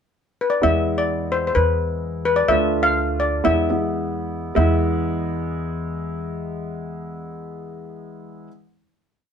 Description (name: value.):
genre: klezmer.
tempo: 97-129 BPM.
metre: 2/4.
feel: straight.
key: unclear.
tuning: A4 = 436 Hz.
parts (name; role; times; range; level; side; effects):
steel pan; melody; 0.4-8.5 s; B4 to F5; -20 LUFS; left 3 dB; none.
clear upright piano; accompaniment; 0.6-8.5 s; G#3 to F4; -25 LUFS; right 2 dB; none.
upright bass; bass; 0.6-8.5 s; D2 to E2; -26 LUFS; right 1 dB; none.
room: moderate small room reverb, RT60 0.6 s.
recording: none.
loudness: -19 LUFS.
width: side -7 dB against mid.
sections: 0.0-0.6 pickup bar; 0.6-4.6 A section; 4.6-7.0 final chord.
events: slowing down 2.5-4.6.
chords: 0.0 N.C.; 0.6 E; 2.5 Dm; 3.5 E.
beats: 0.16 | 0.62 1.09 | 1.56 2.02 | 2.49 2.96 | 3.45 3.98 | 4.56 5.18 | 5.79 6.40.